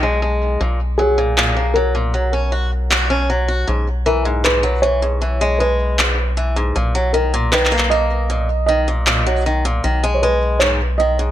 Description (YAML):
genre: folktronica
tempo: 78 BPM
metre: 4/4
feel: straight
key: B major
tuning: A4 = 440 Hz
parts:
  - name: picked swing-style acoustic guitar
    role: arpeggios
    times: 0.0-11.3 s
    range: G#2 to F#4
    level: -20 LUFS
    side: equal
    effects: low-pass filter, digital delay
  - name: round analog bass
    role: bass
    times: 0.0-11.3 s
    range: B1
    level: -19 LUFS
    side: equal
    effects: tube saturation
  - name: felt-muted upright piano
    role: melody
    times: 1.0-11.3 s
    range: G#4 to D#5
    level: -19 LUFS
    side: right 1 dB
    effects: vintage 12-bit sampler grit, digital delay
  - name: electronic handclaps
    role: drums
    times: 1.4-10.8 s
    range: none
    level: -18 LUFS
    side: equal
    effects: overdrive
room: light reverb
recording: none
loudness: -15 LUFS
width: side -12 dB against mid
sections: 0.0-11.3 A section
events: none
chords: 0.0 B5; 0.6 F#/B; 3.7 E/B; 6.8 Bmaj7; 9.8 B6